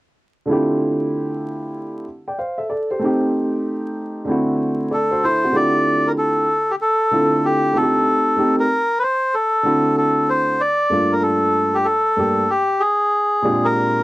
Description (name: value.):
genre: hip hop.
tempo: 95 BPM.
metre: 4/4.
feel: swing 64% on 16ths.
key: D minor.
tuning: A4 = 440 Hz.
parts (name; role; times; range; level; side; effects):
dark baby grand piano; accompaniment; 0.5-14.0 s; G2 to G5; -19 LUFS; equal; cassette tape.
melodica; melody; 4.9-14.0 s; G4 to D5; -17 LUFS; equal; cassette tape.
room: wet booth ambience, RT60 0.2 s.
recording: home recording on cassette, vinyl crackle.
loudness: -16 LUFS.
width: side -18 dB against mid.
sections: 0.5-5.5 A section; 5.5-14.0 B section.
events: none.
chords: 0.5 Dm11; 3.0 Am7b5; 4.3 D7; 5.5 Dm11; 8.1 Am7b5; 9.3 D7; 10.6 Gm9; 13.1 Bb13.